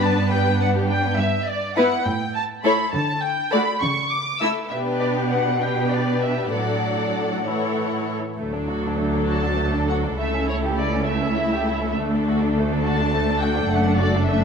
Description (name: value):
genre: quick classical-period movement for string orchestra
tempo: 68 BPM (dotted quarters)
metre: 6/8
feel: rubato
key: D major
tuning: A4 = 440 Hz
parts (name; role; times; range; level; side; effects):
- dark studio violin section; melody; 0.0-14.4 s; C#5 to E6; -25 LUFS; left 1 dB; none
- warm studio violin section; second line; 0.0-14.4 s; G3 to E5; -25 LUFS; left 3 dB; none
- rich studio viola section; accompaniment; 0.0-14.4 s; E3 to F#4; -25 LUFS; equal; none
- rich studio cello section; bass; 0.0-14.4 s; C#2 to D3; -25 LUFS; right 2 dB; none
- rich studio double bass section; bass; 8.4-14.4 s; F#1 to D2; -28 LUFS; right 4 dB; none
room: moderate scoring stage reverb, RT60 1.7 s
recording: none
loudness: -19 LUFS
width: side -6 dB against mid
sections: 0.0-8.4 A section; 8.4-14.4 B section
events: none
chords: 0.0 G; 1.2 Em/G; 2.1 A5; 2.9 D; 3.8 A/C#; 4.7 G/B; 6.5 D/A; 7.5 A; 8.4 D; 10.2 A/C#; 12.0 D; 13.7 D/F#